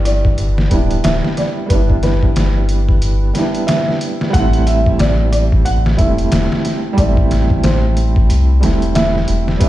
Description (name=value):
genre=trip hop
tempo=91 BPM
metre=4/4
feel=swing 59% on 16ths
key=A minor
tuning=A4 = 440 Hz
part: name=felt-muted upright piano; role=melody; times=0.0-9.6 s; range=B4 to F#5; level=-23 LUFS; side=right 1 dB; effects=tape echo
part: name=felt-muted upright piano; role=accompaniment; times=0.0-9.7 s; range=G3 to E4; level=-19 LUFS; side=right 2 dB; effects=tremolo, tape echo
part: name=soft dub sub bass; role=bass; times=0.0-9.7 s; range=D1 to C2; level=-15 LUFS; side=equal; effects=none
part: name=trip hop sampler-style drum kit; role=drums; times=0.1-9.7 s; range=hi-hat, kick drum, snare drum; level=-16 LUFS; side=equal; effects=overdrive
part: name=concert harp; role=arpeggios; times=9.6-9.7 s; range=none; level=barely audible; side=none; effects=none
room=little or no reverb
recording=played on a big sound system in a bare room, stone room reverb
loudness=-12 LUFS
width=side -14 dB against mid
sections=0.0-9.7 A section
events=none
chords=0.0 G6; 4.3 Am7